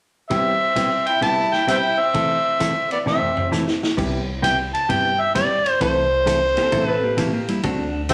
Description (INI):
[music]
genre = country, western swing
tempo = 131 BPM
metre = 4/4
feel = swing 66% on 8ths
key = C major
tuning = A4 = 440 Hz
[part]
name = overdriven harmonica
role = melody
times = 0.3-8.1 s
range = C5 to A5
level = -21 LUFS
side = equal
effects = none
[part]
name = clear fiddle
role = second line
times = 0.3-3.5 s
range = B3 to E4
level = -29 LUFS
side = equal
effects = none
[part]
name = hollow-body jazz guitar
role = accompaniment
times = 0.3-8.1 s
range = C3 to A4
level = -27 LUFS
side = equal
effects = none
[part]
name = swinging big-band drum kit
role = drums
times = 0.3-8.1 s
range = crash cymbal, hi-hat, kick drum, ride cymbal, snare drum, toms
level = -32 LUFS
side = equal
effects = none
[part]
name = upright bass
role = bass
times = 4.0-8.1 s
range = G1 to A2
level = -32 LUFS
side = equal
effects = none
[part]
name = clean lap steel guitar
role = second line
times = 6.6-8.0 s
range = G3 to A4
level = -27 LUFS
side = equal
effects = none
[sound]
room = wet large studio reverb, RT60 1.0 s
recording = none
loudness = -20 LUFS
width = mono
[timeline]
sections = 0.3-4.0 A section; 4.0-8.1 B section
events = drum fill 3.1-4.0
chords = 0.3 Cmaj7; 2.1 Am/C; 4.0 Cmaj7; 5.8 Am/C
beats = | 0.31 0.77 1.22 1.68 | 2.14 2.60 3.06 3.52 | 3.98 4.43 4.89 5.35 | 5.81 6.27 6.72 7.18 | 7.64 8.10